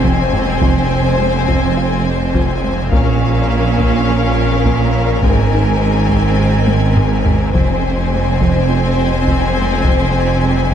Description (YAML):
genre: cinematic, hybrid orchestral and electronic film score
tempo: 104 BPM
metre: 4/4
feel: straight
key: F minor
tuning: A4 = 440 Hz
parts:
  - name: clear symphonic violin section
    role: melody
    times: 0.0-10.7 s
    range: F5 to Ab5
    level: -23 LUFS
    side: left 4 dB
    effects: none
  - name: rich symphonic violin section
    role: second line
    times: 0.0-10.7 s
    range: Bb4 to C5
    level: -22 LUFS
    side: left 5 dB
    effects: none
  - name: rich symphonic viola section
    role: accompaniment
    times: 0.0-10.7 s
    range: C4 to Db4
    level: -21 LUFS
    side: right 1 dB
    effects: none
  - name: tight sequenced synth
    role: arpeggios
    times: 0.0-10.7 s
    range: F3 to Bb4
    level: -25 LUFS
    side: right 1 dB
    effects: chorus, tape echo
  - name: bright symphonic cello section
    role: bass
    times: 0.0-10.7 s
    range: F2 to Bb2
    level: -20 LUFS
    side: right 4 dB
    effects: none
  - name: snarling distorted saw bass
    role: bass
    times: 0.0-10.7 s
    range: F1 to Bb1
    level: -21 LUFS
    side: left 1 dB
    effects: distortion
  - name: warm symphonic double bass section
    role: bass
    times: 0.0-10.7 s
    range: F1 to Bb1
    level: -18 LUFS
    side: right 3 dB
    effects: none
  - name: solo taiko drums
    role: drums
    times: 0.0-10.7 s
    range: none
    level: -19 LUFS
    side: left 1 dB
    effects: none
  - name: impact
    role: sound effects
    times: 0.0-0.6 s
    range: none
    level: -34 LUFS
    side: left 1 dB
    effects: none
room: moderate scoring stage reverb, RT60 1.5 s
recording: dark, warm production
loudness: -12 LUFS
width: side -9 dB against mid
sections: 0.0-10.7 A section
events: impact 0.0-0.6; drum fill 6.7-7.5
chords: 0.0 Fm; 2.9 Bbm; 5.2 Abadd9; 7.5 Fm